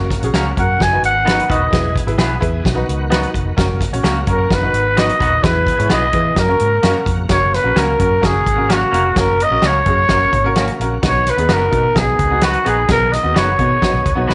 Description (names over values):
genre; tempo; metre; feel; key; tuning
uptempo 1960s-style soul; 129 BPM; 4/4; straight; B major; A4 = 441 Hz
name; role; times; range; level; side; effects
clear upright piano; accompaniment; 0.0-14.3 s; B3 to C#5; -26 LUFS; equal; none
overdriven tonewheel organ; sustained chords; 0.0-14.3 s; C#3 to G#4; -31 LUFS; equal; none
vintage muted fingered electric bass; bass; 0.0-14.3 s; D#1 to E3; -22 LUFS; equal; transformer saturation
natural country drum kit; drums; 0.1-14.3 s; hi-hat, kick drum, snare drum; -21 LUFS; equal; none
electric guitar through a small old amp; stabs; 0.3-14.3 s; A#3 to B4; -26 LUFS; equal; spring reverb
growling trumpet; melody; 0.6-14.3 s; F#4 to G#5; -18 LUFS; equal; none
room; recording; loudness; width
light reverb, small room reverb; nothing above 11.0 kHz; -15 LUFS; mono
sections
0.0-7.3 A section; 7.3-14.3 B section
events
none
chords
0.0 F#; 0.8 B/F#; 1.7 E; 2.7 B; 3.6 F#; 4.5 B/F#; 5.4 E; 6.4 F#; 11.0 B